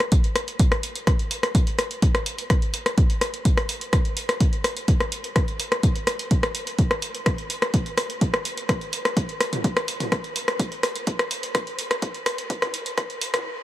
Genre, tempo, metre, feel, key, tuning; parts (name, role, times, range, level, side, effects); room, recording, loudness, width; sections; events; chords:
melodic techno; 126 BPM; 4/4; straight
punchy analog drum machine; drums; 0.0-13.4 s; hi-hat, rim click, toms; -24 LUFS; equal; sidechain pumping on toms, sidechain pumping on hats
electronic kick drum; drums; 0.1-13.1 s; -20 LUFS; equal
light reverb; high-pass filter; -21 LUFS; side -14 dB against mid
0.0-13.6 A section
build-up 0.0-13.6; filter sweep 0.0-13.6; stop 13.5